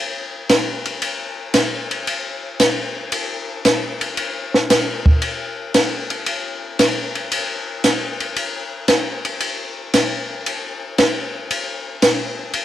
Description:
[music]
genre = jazz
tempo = 114 BPM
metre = 4/4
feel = swing 69% on 8ths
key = none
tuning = none
[part]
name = compact cocktail drum kit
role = drums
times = 0.5-12.6 s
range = hi-hat, kick drum, ride cymbal, snare drum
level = -18 LUFS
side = equal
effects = cassette tape
[sound]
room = wet spring reverb, RT60 1.7 s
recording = home recording on cassette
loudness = -18 LUFS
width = side -12 dB against mid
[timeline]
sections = 0.0-12.6 A section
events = none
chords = none

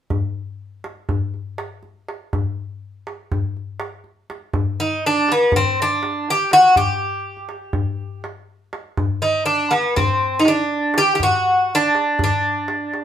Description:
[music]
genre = Turkish makam ensemble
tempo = 243 BPM (eighths)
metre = 9/8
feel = straight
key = D makam hicaz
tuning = A4 = 440 Hz
[part]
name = darbuka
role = percussion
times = 0.1-13.0 s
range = none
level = -24 LUFS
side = left 2 dB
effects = none
[part]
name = Greek bouzouki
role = melody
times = 4.8-13.0 s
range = B3-40c to G4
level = -16 LUFS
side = equal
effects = none
[sound]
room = wet studio reverb, RT60 0.6 s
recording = band playing live in one room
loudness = -16 LUFS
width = side -10 dB against mid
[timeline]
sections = 0.1-4.5 A section; 4.5-13.0 B section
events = none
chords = none

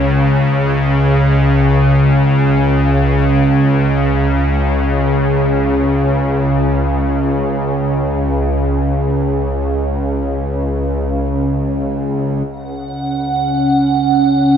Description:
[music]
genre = dark ambient drone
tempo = free time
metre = none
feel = none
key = unclear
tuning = A4 = 440 Hz
[part]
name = bowed-like drone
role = drone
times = 0.0-14.6 s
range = C#2 to C#3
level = -13 LUFS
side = equal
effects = built-in reverb
[part]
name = dark analog pad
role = sustained chords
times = 12.5-14.6 s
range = C#4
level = -14 LUFS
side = right 1 dB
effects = chorus
[part]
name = icy glass pad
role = texture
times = 12.7-14.6 s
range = F#5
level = -18 LUFS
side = right 5 dB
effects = chorus, built-in reverb
[sound]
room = wet huge ambient reverb, RT60 7.7 s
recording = in a vast, echoing space, nothing above 10.3 kHz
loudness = -13 LUFS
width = side -8 dB against mid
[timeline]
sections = 0.0-12.5 A section; 12.5-14.6 B section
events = none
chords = 0.0 N.C.; 12.5 C#5

